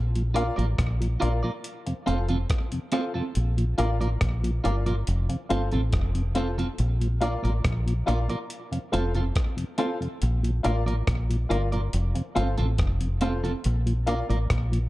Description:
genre	roots reggae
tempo	70 BPM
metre	4/4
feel	straight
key	Bb major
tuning	A4 = 440 Hz
part	deep dub fingered electric bass	bass	0.0-14.9 s	F1 to Bb1	-25 LUFS	equal	none
part	mellow tonewheel organ	accompaniment	0.2-14.8 s	F2 to F4	-32 LUFS	equal	chorus vibrato, slow rotary speaker
part	breakbeat sampler-style drum kit	drums	0.2-14.9 s	hi-hat, kick drum, rim click	-29 LUFS	equal	none
part	electric guitar at the edge of break-up	accompaniment	0.3-14.4 s	C4 to D5	-32 LUFS	right 3 dB	dub echo
part	warm upright piano	stabs	0.3-14.2 s	F4 to F5	-32 LUFS	left 3 dB	none
room	light reverb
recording	dark, warm production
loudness	-23 LUFS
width	side -18 dB against mid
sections	0.0-14.9 A section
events	none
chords	0.0 Bb; 1.6 F; 3.4 Bb; 5.1 F; 6.8 Bb; 8.5 F; 10.2 Bb; 11.9 F; 13.6 Bb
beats	0.78 1.64 2.50 | 3.35 4.21 5.07 5.93 | 6.78 7.64 8.50 9.36 | 10.21 11.07 11.93 12.78 | 13.64 14.50

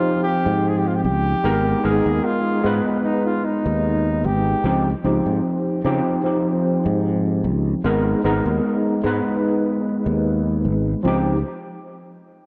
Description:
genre	vaporwave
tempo	75 BPM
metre	4/4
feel	swing 54% on 16ths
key	Db lydian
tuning	A4 = 441 Hz
part	mellow flugelhorn	melody	0.0-5.0 s	Eb4 to Ab4	-27 LUFS	equal	tape echo
part	overdriven tine electric piano	accompaniment	0.0-11.4 s	F3 to Cb5	-22 LUFS	equal	ensemble chorus, analog delay
part	sustaining fretless electric bass	bass	0.5-11.4 s	Ab1 to Db3	-24 LUFS	equal	none
room	moderate lush hall reverb, RT60 2.6 s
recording	dark, warm production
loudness	-20 LUFS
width	mono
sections	0.0-11.0 A section; 11.0-12.5 B section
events	none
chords	0.0 Dbmaj9#11; 1.4 Abmadd9; 4.6 Dbmaj9#11; 7.8 Abmadd9; 11.0 Dbmaj9#11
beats	0.65 | 1.45 2.25 3.05 3.85 | 4.65 5.45 6.25 7.05 | 7.85 8.65 9.45 10.25 | 11.05

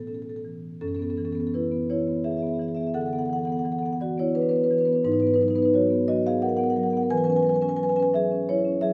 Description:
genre	classical, contemporary piece for solo marimba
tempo	86 BPM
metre	3/4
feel	rubato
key	F# minor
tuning	A4 = 440 Hz
part	marimba with soft mallets	solo	0.0-8.9 s	F#2 to G#5	-24 LUFS	equal	none
room	wet stone room reverb, RT60 1.3 s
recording	none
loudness	-24 LUFS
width	mono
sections	0.8-8.9 A section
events	none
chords	0.0 Aadd9; 0.8 F#m11; 2.9 D69; 5.0 G#m9; 7.1 E69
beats	0.08 | 0.82 1.53 2.24 | 2.94 3.65 4.35 | 5.05 5.74 6.42 | 7.11 7.79 8.48

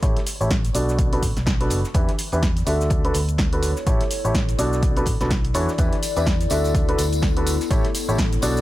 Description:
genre	piano house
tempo	125 BPM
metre	4/4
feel	swing 58% on 16ths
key	E dorian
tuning	A4 = 441 Hz
part	bright concert grand piano	riff	0.0-8.6 s	B2 to E5	-25 LUFS	equal	sidechain pumping, low-pass filter, ping-pong delay
part	fingered electric bass	bass	0.0-8.6 s	F#1 to E2	-24 LUFS	equal	sidechain pumping
part	cloth-damped thuddy drum kit	drums	0.0-8.6 s	hi-hat, snare drum	-41 LUFS	right 2 dB	none
part	electronic kick drum	drums	0.0-8.3 s	none	-22 LUFS	equal	overdrive, studio reverb
part	punchy analog drum machine	drums	0.0-8.6 s	hi-hat, shaker, snare drum	-28 LUFS	equal	overdrive, studio reverb
part	warbly tape-like pad	texture	0.0-8.6 s	B3 to C#6	-30 LUFS	left 4 dB	chorus, built-in reverb, sidechain pumping
part	tambourine	percussion	5.8-8.6 s	none	-34 LUFS	left 1 dB	none
room	small room ambience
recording	none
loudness	-18 LUFS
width	side -16 dB against mid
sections	0.0-8.6 A section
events	none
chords	0.0 A7; 1.0 Bm7; 1.9 Em7; 2.9 D6; 3.9 A7; 4.8 Bm7; 5.8 Em7; 6.7 D6; 7.7 A7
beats	| 0.03 0.51 0.99 1.47 | 1.95 2.43 2.91 3.39 | 3.87 4.35 4.83 5.31 | 5.79 6.27 6.75 7.23 | 7.71 8.19

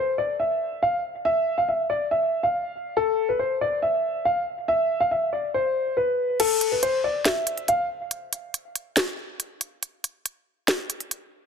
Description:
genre	hip hop, trap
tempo	140 BPM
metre	4/4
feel	half-time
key	unclear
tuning	A4 = 441 Hz
part	dark grand piano	melody	0.0-7.8 s	A4 to F5	-22 LUFS	left 1 dB	low-pass filter, tape echo
part	trap drum kit	drums	6.4-11.2 s	crash cymbal, hi-hat, snare drum	-24 LUFS	equal	none
room	light reverb, digital ambience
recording	dense, heavily limited modern master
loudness	-22 LUFS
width	side -6 dB against mid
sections	0.0-6.4 A section; 6.4-11.5 B section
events	break 6.4-11.5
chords	none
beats	0.40 0.82 | 1.25 1.68 2.11 2.54 | 2.97 3.40 3.83 4.25 | 4.68 5.11 5.54 5.97 | 6.40 6.83 7.25 7.68 | 8.11 8.54 8.97 9.40 | 9.82 10.25 10.68 11.11

